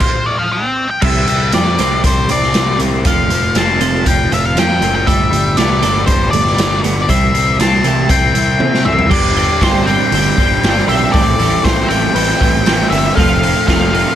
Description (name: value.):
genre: indie rock.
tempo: 118 BPM.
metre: 4/4.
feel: straight.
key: G mixolydian.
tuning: A4 = 440 Hz.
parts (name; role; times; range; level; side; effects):
octave-fuzz lead guitar; melody; 0.0-14.2 s; C5 to A5; -17 LUFS; left 2 dB; distortion, analog delay.
raw garage drum kit; drums; 0.0-14.1 s; crash cymbal, hi-hat, kick drum, snare drum, toms; -16 LUFS; equal; none.
raw garage guitar; riff; 1.0-14.2 s; E3 to F4; -20 LUFS; left 6 dB; overdrive, analog delay.
twelve-string electric guitar; riff; 1.0-14.2 s; G2 to G4; -20 LUFS; right 9 dB; analog chorus, analog delay.
fuzz picked electric bass; bass; 1.0-14.0 s; F1 to C3; -18 LUFS; equal; overdrive.
tine electric piano; second line; 9.1-14.2 s; G4 to B4; -26 LUFS; left 7 dB; phaser, analog delay.
room: small room ambience.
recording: echo-heavy mix.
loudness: -11 LUFS.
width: side -10 dB against mid.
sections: 0.0-1.0 A section; 1.0-9.1 B section; 9.1-14.2 C section.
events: stop 0.0-1.0; drum fill 8.6-9.1.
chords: 0.0 N.C.; 1.0 Csus2; 3.0 F; 5.1 Gadd9; 7.1 C; 9.1 Gsus4; 11.1 Am7; 13.2 F.